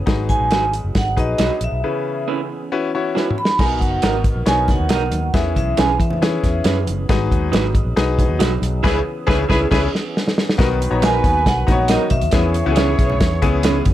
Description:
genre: uptempo 1960s-style soul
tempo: 137 BPM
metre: 4/4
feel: straight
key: B major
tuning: A4 = 443 Hz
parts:
  - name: percussive tonewheel organ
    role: sustained chords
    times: 0.0-13.9 s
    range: D#3 to A#4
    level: -30 LUFS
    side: right 1 dB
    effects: slow rotary speaker, chorus vibrato
  - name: vintage muted fingered electric bass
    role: bass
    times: 0.0-13.9 s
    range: F#1 to E3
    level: -21 LUFS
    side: equal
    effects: none
  - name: bright baby grand piano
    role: accompaniment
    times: 0.1-13.8 s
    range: G#2 to A#5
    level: -22 LUFS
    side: left 5 dB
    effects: none
  - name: warm soul drum kit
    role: drums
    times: 0.1-13.9 s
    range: crash cymbal, hi-hat, kick drum, snare drum, toms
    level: -19 LUFS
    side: equal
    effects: none
  - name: vibraphone with medium hard mallets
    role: melody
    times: 0.3-6.8, 11.0-13.4 s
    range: D#5 to B5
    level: -22 LUFS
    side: right 2 dB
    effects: slapback echo
  - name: electric guitar through a small old amp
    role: stabs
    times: 0.5-13.8 s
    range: B3 to B4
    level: -26 LUFS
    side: right 7 dB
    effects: spring reverb
  - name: congas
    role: percussion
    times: 3.6-13.9 s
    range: none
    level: -31 LUFS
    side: equal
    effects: none
  - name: warm horn section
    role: second line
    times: 8.8-13.8 s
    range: B3 to C#5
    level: -26 LUFS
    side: right 1 dB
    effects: none
room: little or no reverb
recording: none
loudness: -15 LUFS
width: side -13 dB against mid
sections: 0.0-3.6 A section; 3.6-10.6 B section; 10.6-13.9 C section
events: break 1.8-3.6; drum fill 3.2-3.6, 9.7-10.6; band accent 8.8-10.6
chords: 0.1 G#m7; 1.8 C#m7; 2.7 F#7sus4; 3.6 Bmaj7; 5.3 E6; 7.1 G#m7; 8.8 C#m7; 10.6 Bmaj7; 12.3 E6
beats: | 0.08 0.52 0.95 1.39 | 1.83 2.27 2.71 3.15 | 3.59 4.03 4.47 4.91 | 5.34 5.78 6.22 6.66 | 7.09 7.53 7.97 8.41 | 8.84 9.28 9.72 10.15 | 10.59 11.03 11.46 11.90 | 12.34 12.77 13.21 13.64

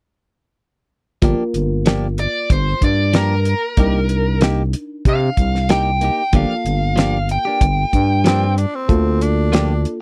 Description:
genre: straight-eighth soul blues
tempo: 94 BPM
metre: 4/4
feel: straight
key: G minor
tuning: A4 = 441 Hz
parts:
  - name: reed electric piano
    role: accompaniment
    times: 1.2-10.0 s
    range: Bb3 to Bb4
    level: -28 LUFS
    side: equal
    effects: phaser
  - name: direct-recorded clean electric guitar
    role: stabs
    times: 1.2-9.7 s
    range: F3 to G4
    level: -24 LUFS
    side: equal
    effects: none
  - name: growling FM bass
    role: bass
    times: 1.2-9.9 s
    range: G1 to C3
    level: -20 LUFS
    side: equal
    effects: none
  - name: cloth-damped thuddy drum kit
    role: drums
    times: 1.2-10.0 s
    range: hi-hat, kick drum, snare drum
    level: -19 LUFS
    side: equal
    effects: none
  - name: smooth overdriven lead guitar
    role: melody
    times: 2.2-8.5 s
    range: Bb4 to G5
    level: -23 LUFS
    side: equal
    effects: none
  - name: growling tenor saxophone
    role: second line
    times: 8.3-10.0 s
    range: C4 to D4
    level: -27 LUFS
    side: equal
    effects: none
room: little or no reverb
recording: dry, close 1970s-style studio recording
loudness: -17 LUFS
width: mono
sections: 1.2-10.0 A section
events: none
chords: 1.2 Gm7; 3.8 Cm7; 6.3 Gm7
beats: | 1.23 1.86 2.50 3.14 | 3.78 4.42 5.06 5.70 | 6.33 6.97 7.61 8.25 | 8.88 9.52

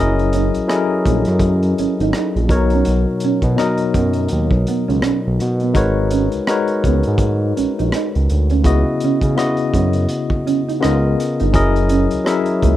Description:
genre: R&B, neo-soul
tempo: 83 BPM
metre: 4/4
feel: swing 58% on 16ths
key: unclear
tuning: A4 = 439 Hz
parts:
  - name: barky tine electric piano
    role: accompaniment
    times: 0.0-12.8 s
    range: B2 to E5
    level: -18 LUFS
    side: left 4 dB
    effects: medium stereo tremolo
  - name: smooth synth bass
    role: bass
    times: 0.0-12.8 s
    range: F#1 to C#3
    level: -17 LUFS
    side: right 1 dB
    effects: none
  - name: crunchy breakbeat drum kit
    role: drums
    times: 0.2-12.8 s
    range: hi-hat, kick drum, rim click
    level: -23 LUFS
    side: right 1 dB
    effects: none
  - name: mellow electric guitar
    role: second line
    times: 0.3-12.8 s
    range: A#3 to D#4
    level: -21 LUFS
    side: right 9 dB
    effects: none
room: light reverb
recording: rough home demo mix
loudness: -14 LUFS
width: side -13 dB against mid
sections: 0.0-12.8 A section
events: none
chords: 0.0 F#13; 2.5 Bmaj9; 5.8 G#m11; 8.6 C#m11; 10.8 C#13; 11.5 F#13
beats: 0.69 1.42 2.14 | 2.86 3.58 4.31 5.03 | 5.75 6.48 7.20 7.92 | 8.64 9.37 10.09 10.81 | 11.54 12.26

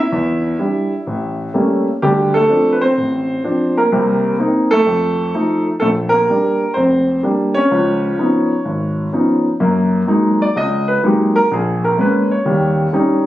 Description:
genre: solo jazz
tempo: 126 BPM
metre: 4/4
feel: swing 66% on 8ths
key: F# major from 9.6 s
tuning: A4 = 441 Hz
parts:
  - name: warm grand piano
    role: solo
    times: 0.0-13.3 s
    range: F1 to E5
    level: -13 LUFS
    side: equal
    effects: none
room: light reverb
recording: recorded on a phone in the room, studio reverb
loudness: -13 LUFS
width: side -14 dB against mid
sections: 0.0-9.6 A section; 9.6-13.3 B section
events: grand piano solo 9.6-13.3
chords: 0.1 Em7; 1.1 A7b9; 2.0 Dm7; 3.9 Cm7; 4.9 F7; 5.8 Bb6; 7.7 Db9; 9.6 F#69; 11.5 A#m7; 12.4 D#7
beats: | 0.10 0.58 1.05 1.53 | 2.01 2.48 2.96 3.43 | 3.91 4.38 4.86 5.33 | 5.81 6.28 6.76 7.23 | 7.71 8.18 8.65 9.13 | 9.60 10.07 10.55 11.02 | 11.50 11.97 12.45 12.92

